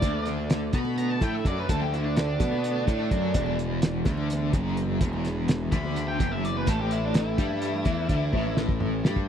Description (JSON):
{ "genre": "psychedelic rock", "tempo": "252 BPM (eighths)", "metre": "7/8", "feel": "straight", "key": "E mixolydian", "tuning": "A4 = 440 Hz", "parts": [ { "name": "octave-fuzz lead guitar", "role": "melody", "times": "0.0-8.5 s", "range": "D4 to B5", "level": "-32 LUFS", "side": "right 1 dB", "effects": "distortion, tape echo" }, { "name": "string machine, violins", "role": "sustained chords", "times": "0.0-9.3 s", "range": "D3 to A4", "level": "-38 LUFS", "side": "right 6 dB", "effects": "ensemble chorus" }, { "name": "overdriven electric guitar", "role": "riff", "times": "0.0-9.3 s", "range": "E2 to B3", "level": "-30 LUFS", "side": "left 1 dB", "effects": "tremolo" }, { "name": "fuzz picked electric bass", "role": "bass", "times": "0.0-9.3 s", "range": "E1 to B2", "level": "-29 LUFS", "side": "equal", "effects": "overdrive" }, { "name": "cloth-damped thuddy drum kit", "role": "drums", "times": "0.0-9.3 s", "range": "hi-hat, kick drum, snare drum, toms", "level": "-26 LUFS", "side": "equal", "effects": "none" }, { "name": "congas", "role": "percussion", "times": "0.0-9.3 s", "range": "none", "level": "-39 LUFS", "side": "left 7 dB", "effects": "none" } ], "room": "little or no reverb", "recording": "dry, close 1970s-style studio recording", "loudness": "-24 LUFS", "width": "side -9 dB against mid", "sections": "0.0-9.3 A section", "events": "lead electric guitar solo 0.0-9.3; drum fill 8.3-9.3", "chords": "0.0 D5; 3.4 E; 6.7 A5" }